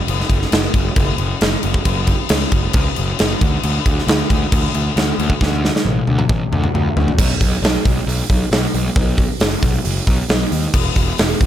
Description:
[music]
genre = quiet-loud alternative rock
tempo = 135 BPM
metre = 4/4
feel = straight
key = unclear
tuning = A4 = 440 Hz
[part]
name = fuzz picked electric bass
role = bass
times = 0.1-11.5 s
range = E1 to D#2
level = -19 LUFS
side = equal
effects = overdrive
[part]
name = big rock drum kit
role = drums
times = 0.1-11.5 s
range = crash cymbal, hi-hat, kick drum, snare drum, toms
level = -16 LUFS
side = equal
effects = none
[sound]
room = little or no reverb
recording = none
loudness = -14 LUFS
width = side -11 dB against mid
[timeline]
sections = 0.0-7.2 A section; 7.2-11.5 B section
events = drum fill 5.4-7.2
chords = none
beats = | 0.07 0.52 0.96 1.41 | 1.85 2.30 2.74 3.18 | 3.63 4.07 4.51 4.96 | 5.40 5.84 6.29 6.73 | 7.17 7.62 8.06 8.51 | 8.95 9.40 9.84 10.29 | 10.73 11.18

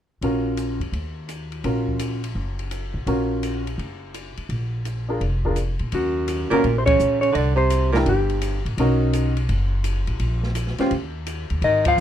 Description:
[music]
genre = jazz, small-group swing and bop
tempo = 168 BPM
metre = 4/4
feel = swing 66% on 8ths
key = Eb minor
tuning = A4 = 439 Hz
[part]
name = warm concert grand piano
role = accompaniment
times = 0.2-10.9 s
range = Db4 to C5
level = -23 LUFS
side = equal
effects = none
[part]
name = upright bass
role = bass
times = 0.2-12.0 s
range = F1 to Bb2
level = -24 LUFS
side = equal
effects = none
[part]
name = open jazz drum kit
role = drums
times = 0.2-12.0 s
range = hi-hat, kick drum, ride cymbal, snare drum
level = -32 LUFS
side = left 1 dB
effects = none
[part]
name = hollow-body jazz guitar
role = melody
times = 5.9-8.6, 11.6-12.0 s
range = Gb4 to F5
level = -21 LUFS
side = left 2 dB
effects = none
[part]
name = warm baritone saxophone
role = second line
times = 5.9-8.6, 11.6-12.0 s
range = Gb2 to F3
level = -24 LUFS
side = right 6 dB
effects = none
[sound]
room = light reverb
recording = minimal, uncompressed stereo recording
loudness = -20 LUFS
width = side -10 dB against mid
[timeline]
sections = 0.2-5.9 A section; 5.9-12.0 B section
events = band accent 6.8, 11.8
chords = 0.2 Ebm7/Bb; 4.5 Bb7; 5.9 Ebm7; 7.4 Csus2; 8.8 Bmaj9; 10.2 Bbmadd9; 10.9 N.C.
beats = | 0.22 0.58 0.93 1.29 | 1.65 2.00 2.36 2.72 | 3.07 3.43 3.79 4.14 | 4.50 4.86 5.21 5.57 | 5.93 6.28 6.64 7.00 | 7.35 7.71 8.06 8.42 | 8.78 9.13 9.49 9.85 | 10.20 10.56 10.92 11.27 | 11.63 11.98

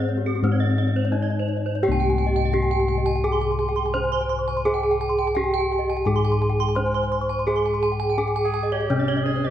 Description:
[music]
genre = gamelan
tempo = 85 BPM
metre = 4/4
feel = straight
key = C pelog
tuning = A4 = 438 Hz
[part]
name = gamelan-type bronze metallophone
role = melody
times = 0.0-9.5 s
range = C4 to C5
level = -24 LUFS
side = equal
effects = none
[part]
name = gamelan-type bronze metallophone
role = arpeggios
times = 0.0-9.5 s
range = Ab4 to C6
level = -29 LUFS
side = right 6 dB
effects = none
[part]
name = gamelan-type bossed gongs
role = bass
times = 0.0-9.5 s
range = C2 to Ab4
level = -23 LUFS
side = left 1 dB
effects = none
[part]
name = gamelan-type bronze metallophone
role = arpeggios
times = 0.1-9.4 s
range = G4 to Db6+35c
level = -30 LUFS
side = left 4 dB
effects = none
[part]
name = bright clarinet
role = second line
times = 8.4-9.5 s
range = G4 to Ab4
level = -30 LUFS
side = right 6 dB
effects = none
[sound]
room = light reverb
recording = none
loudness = -20 LUFS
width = side -11 dB against mid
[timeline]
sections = 0.0-1.8 A section; 1.8-9.5 B section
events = none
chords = none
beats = 0.43 1.12 | 1.83 2.53 3.24 3.94 | 4.65 5.35 6.06 6.76 | 7.47 8.18 8.89

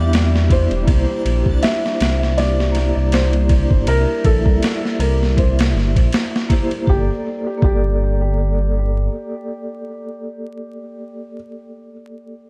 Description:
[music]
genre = trip hop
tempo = 80 BPM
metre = 4/4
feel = swing 56% on 16ths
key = G dorian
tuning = A4 = 440 Hz
[part]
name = felt-muted upright piano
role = melody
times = 0.0-11.3 s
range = G4 to E5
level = -27 LUFS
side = equal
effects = dub echo
[part]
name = vibraphone with medium mallets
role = accompaniment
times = 0.0-12.4 s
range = Bb3 to E5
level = -27 LUFS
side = equal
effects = tremolo, tape echo
[part]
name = warbly tape-like pad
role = sustained chords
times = 0.0-6.9 s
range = G3 to G4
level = -35 LUFS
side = equal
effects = none
[part]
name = dark detuned saw bass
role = bass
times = 0.0-9.1 s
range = E1 to E2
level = -20 LUFS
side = equal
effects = none
[part]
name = backwards swelling texture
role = texture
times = 0.0-6.9 s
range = D4 to D5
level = -39 LUFS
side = equal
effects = none
[part]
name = boom bap sampler-style drum kit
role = drums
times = 0.1-7.9 s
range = kick drum, ride cymbal, snare drum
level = -21 LUFS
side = equal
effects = vintage 12-bit sampler grit, tape echo
[sound]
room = light reverb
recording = echo-heavy mix, vinyl crackle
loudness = -17 LUFS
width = mono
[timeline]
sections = 0.0-6.9 A section; 6.9-9.9 B section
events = none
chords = 0.0 Em7; 0.9 C7; 6.9 Gmadd9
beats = 0.12 | 0.87 1.62 2.37 3.12 | 3.87 4.62 5.37 6.12 | 6.87 7.62 8.37 9.12

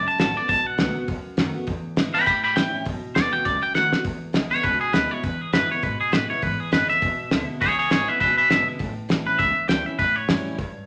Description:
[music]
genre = rockabilly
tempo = 202 BPM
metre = 4/4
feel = swing 59% on 8ths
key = E mixolydian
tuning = A4 = 440 Hz
[part]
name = twangy electric guitar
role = melody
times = 0.0-10.9 s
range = G#4 to B5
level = -24 LUFS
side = equal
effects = none
[part]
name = picked steel-string acoustic guitar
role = accompaniment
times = 0.0-10.9 s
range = E2 to F#4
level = -33 LUFS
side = equal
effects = none
[part]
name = upright bass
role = bass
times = 0.0-10.8 s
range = F#1 to A2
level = -37 LUFS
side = equal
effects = none
[part]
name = cloth-damped thuddy drum kit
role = drums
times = 0.2-10.7 s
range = hi-hat, kick drum, snare drum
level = -27 LUFS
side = equal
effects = none
[sound]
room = moderate large studio reverb, RT60 0.8 s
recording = none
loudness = -22 LUFS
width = mono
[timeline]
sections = 0.0-4.0 A section; 4.0-10.9 B section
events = drum fill 3.8; clean electric guitar solo 4.0-10.9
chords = 0.0 B7; 1.7 E7; 2.3 A7; 2.9 B7; 4.0 E7; 8.8 A7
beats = 0.19 | 0.49 0.79 1.08 1.38 | 1.68 1.97 2.27 2.57 | 2.86 3.16 3.46 3.75 | 4.05 4.35 4.64 4.94 | 5.24 5.53 5.83 6.13 | 6.42 6.72 7.02 7.32 | 7.61 7.91 8.21 8.51 | 8.80 9.10 9.40 9.69 | 9.99 10.29 10.59

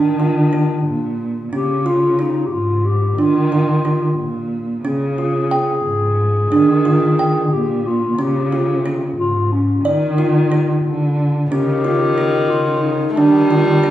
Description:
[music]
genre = contemporary instrumental, chamber music in an uneven meter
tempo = 180 BPM (eighths)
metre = 5/8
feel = straight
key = unclear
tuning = A4 = 440 Hz
[part]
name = dark clarinet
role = melody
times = 0.0-13.9 s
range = Db4 to Ab4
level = -20 LUFS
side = left 4 dB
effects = none
[part]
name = kalimba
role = arpeggios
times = 0.0-13.9 s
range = Db4 to G5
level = -19 LUFS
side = right 3 dB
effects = none
[part]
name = warm cello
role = bass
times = 0.0-13.9 s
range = Ab2 to Eb3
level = -19 LUFS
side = equal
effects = none
[part]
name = dark viola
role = second line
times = 11.5-13.9 s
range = Eb3 to A3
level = -18 LUFS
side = equal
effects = none
[sound]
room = wet recital hall reverb, RT60 1.5 s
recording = heard from further back in the room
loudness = -14 LUFS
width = side -12 dB against mid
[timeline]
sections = 0.0-11.5 A section; 11.5-13.9 B section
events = none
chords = 0.0 Ebmaj9; 1.5 Db; 3.2 Ebmaj9; 4.9 Db; 6.5 Ebmaj9; 8.2 Db; 9.8 Ebmaj9; 11.5 Dbadd9; 13.2 Ebmaj9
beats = 0.20 0.53 0.86 1.20 | 1.53 1.86 2.19 2.53 2.86 | 3.19 3.52 3.86 4.19 4.52 | 4.86 5.19 5.52 5.86 6.19 | 6.52 6.85 7.19 7.52 7.85 | 8.19 8.52 8.85 9.18 9.52 | 9.85 10.18 10.51 10.85 11.18 | 11.51 11.84 12.18 12.51 12.84 | 13.17 13.51 13.84

